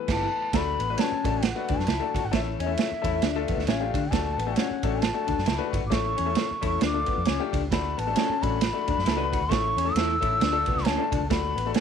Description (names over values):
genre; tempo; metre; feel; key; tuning
uptempo 1960s-style soul; 134 BPM; 4/4; swing 59% on 8ths; unclear; A4 = 440 Hz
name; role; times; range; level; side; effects
bright baby grand piano; accompaniment; 0.0-11.8 s; E3 to B4; -31 LUFS; left 14 dB; none
breathy mellow bansuri; melody; 0.1-11.8 s; E5 to E6; -29 LUFS; left 1 dB; none
electric guitar through a small old amp; stabs; 0.1-0.3, 8.2-11.8 s; G3 to A4; -33 LUFS; right 16 dB; wide subtle chorus
vintage muted fingered electric bass; bass; 0.1-11.7 s; G1 to D3; -31 LUFS; equal; none
vintage drum kit; drums; 0.1-11.8 s; crash cymbal, kick drum, ride cymbal, snare drum; -28 LUFS; right 5 dB; none
electric guitar through a small old amp; riff; 0.8-11.8 s; B3 to F#4; -32 LUFS; left 16 dB; none
room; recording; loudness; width
light reverb, small room reverb; 1960s-style stereo with parts hard left and right; -23 LUFS; side -7 dB against mid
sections
0.5-11.8 A section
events
band accent 0.0-0.5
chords
0.0 G6; 0.5 D; 2.3 A; 3.2 Dm; 4.1 D; 5.9 A; 6.8 Dm; 7.7 D; 9.5 A; 10.4 Dm; 11.3 D